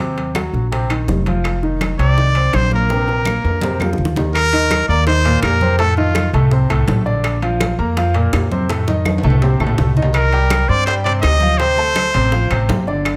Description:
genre	latin, salsa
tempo	165 BPM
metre	4/4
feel	straight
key	Bb major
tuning	A4 = 440 Hz
part	clear concert grand piano	accompaniment	0.0-13.2 s	A2 to C6	-23 LUFS	equal	none
part	upright bass	bass	0.0-13.2 s	F1 to G2	-20 LUFS	equal	none
part	bongos	percussion	0.2-13.2 s	none	-30 LUFS	equal	none
part	congas	percussion	0.2-13.2 s	none	-27 LUFS	equal	none
part	timbales	percussion	0.2-13.2 s	none	-30 LUFS	equal	none
part	claves	percussion	0.4-13.2 s	none	-30 LUFS	equal	none
part	brilliant trumpet	melody	2.0-6.3, 10.1-12.7 s	F4 to Eb5	-20 LUFS	equal	plate reverb
room	moderate large studio reverb, RT60 1.1 s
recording	none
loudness	-16 LUFS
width	mono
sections	0.0-4.3 A section; 4.3-13.2 B section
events	drum fill 2.9-4.3, 8.7-10.2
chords	0.0 Ebm6; 1.4 F5; 2.9 Bbsus2; 4.3 Eb5; 5.8 F7; 7.2 Bb; 8.7 F7; 10.2 Cm9; 11.6 Dm7

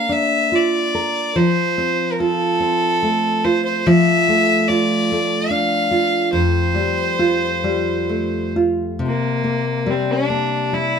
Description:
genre	celtic folk, Celtic slow air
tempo	71 BPM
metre	3/4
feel	rubato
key	unclear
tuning	A4 = 436 Hz
part	rich fiddle	melody	0.0-11.0 s	Bb3 to F5	-19 LUFS	left 1 dB	none
part	nylon-string guitar	accompaniment	0.0-11.0 s	F2 to Bb4	-18 LUFS	equal	none
room	light reverb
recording	close, detailed microphones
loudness	-16 LUFS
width	side -7 dB against mid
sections	0.0-9.0 A section; 9.0-11.0 B section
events	none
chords	0.0 Bb; 1.4 F; 3.9 Dm/F; 6.3 Fadd9; 9.0 C5

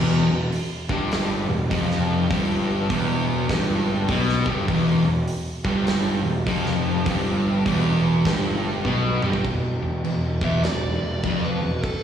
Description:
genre	stoner and doom metal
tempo	101 BPM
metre	4/4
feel	swing 62% on 8ths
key	E phrygian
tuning	A4 = 439 Hz
part	fuzz guitar	riff	0.0-11.8 s	E2 to B2	-22 LUFS	equal	distortion, slapback echo
part	fuzz picked electric bass	bass	0.0-11.8 s	E1 to B1	-26 LUFS	equal	overdrive
part	big rock drum kit	drums	0.5-12.0 s	crash cymbal, hi-hat, kick drum, snare drum, toms	-28 LUFS	right 1 dB	none
part	fuzz lead guitar	melody	10.4-12.0 s	A4 to E5	-29 LUFS	right 1 dB	distortion, slapback echo
room	small room ambience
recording	live gig heard through the venue's PA, recital hall reverb, studio reverb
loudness	-20 LUFS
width	side -9 dB against mid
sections	0.0-9.4 A section; 9.4-12.0 B section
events	drum fill 8.8-9.4; lead electric guitar solo 9.4-12.0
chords	0.0 Em; 9.4 N.C.

